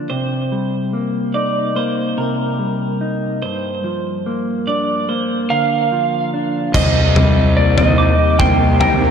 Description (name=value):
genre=post-rock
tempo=72 BPM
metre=4/4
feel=straight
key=unclear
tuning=A4 = 440 Hz
part: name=mellow electric guitar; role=arpeggios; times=0.0-9.1 s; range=G2 to Eb4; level=-20 LUFS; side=left 1 dB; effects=slapback echo, digital delay
part: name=twelve-string electric guitar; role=arpeggios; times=0.1-9.1 s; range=Bb4 to D6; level=-24 LUFS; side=right 2 dB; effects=tremolo, slapback echo, digital delay
part: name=electric slide guitar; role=melody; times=5.5-9.1 s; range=D5 to G5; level=-17 LUFS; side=right 2 dB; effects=digital delay
part: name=evolving wavetable pad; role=sustained chords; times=7.6-9.1 s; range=Eb3 to Bb4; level=-26 LUFS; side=equal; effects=phaser, built-in reverb
part: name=fuzz fingered electric bass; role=bass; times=6.7-9.1 s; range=C2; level=-18 LUFS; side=equal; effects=overdrive
part: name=big rock drum kit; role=drums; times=6.7-9.0 s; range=crash cymbal, kick drum, toms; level=-14 LUFS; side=left 1 dB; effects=none
room=moderate lush hall reverb, RT60 3.0 s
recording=big arena sound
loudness=-14 LUFS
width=side -7 dB against mid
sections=0.0-6.7 A section; 6.7-9.1 B section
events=none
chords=0.1 Cm7; 3.4 Gm7; 6.7 Cm7